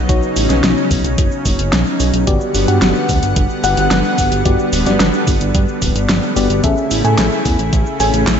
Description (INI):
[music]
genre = synthwave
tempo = 110 BPM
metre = 4/4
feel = straight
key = unclear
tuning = A4 = 440 Hz
[part]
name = lush unison pad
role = sustained chords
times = 0.0-8.4 s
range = C#3 to F#5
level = -19 LUFS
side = equal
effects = chorus, sidechain pumping
[part]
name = mellow FM electric piano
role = stabs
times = 0.0-8.4 s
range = B3 to G#5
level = -19 LUFS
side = left 2 dB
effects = chorus, phaser, digital delay, slapback echo
[part]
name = chorused synth bass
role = bass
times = 0.0-8.4 s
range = D1 to A2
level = -17 LUFS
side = equal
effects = tube saturation
[part]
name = electronic kick drum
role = drums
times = 0.1-7.8 s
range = none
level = -17 LUFS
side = equal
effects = overdrive
[part]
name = pop drum kit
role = drums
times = 0.1-8.4 s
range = cabasa, handclaps, hi-hat, snare drum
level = -19 LUFS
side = equal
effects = overdrive, slapback echo
[sound]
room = moderate lush hall reverb, RT60 2.0 s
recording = big arena sound, nothing above 7.9 kHz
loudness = -12 LUFS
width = side -8 dB against mid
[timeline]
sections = 0.0-8.4 A section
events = none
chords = 0.0 Badd9; 2.3 Gmaj7; 6.6 Amaj7